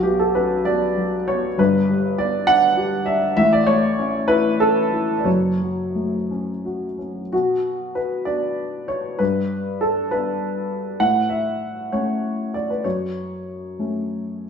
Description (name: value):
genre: neoclassical minimalist piano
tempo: 58-69 BPM (dotted quarters)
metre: 6/8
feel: rubato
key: B minor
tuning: A4 = 439 Hz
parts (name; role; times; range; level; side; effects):
- dark upright piano; solo; 0.0-14.5 s; F#1 to F#5; -19 LUFS; equal; none
room: wet stone room reverb, RT60 1.2 s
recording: band playing live in one room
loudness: -18 LUFS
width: side -7 dB against mid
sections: 0.0-7.3 A section; 7.3-14.5 B section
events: none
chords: 0.0 Bmadd9; 1.6 G; 3.4 A; 5.3 F#m; 7.3 Bm; 9.2 G; 11.0 A; 12.8 F#m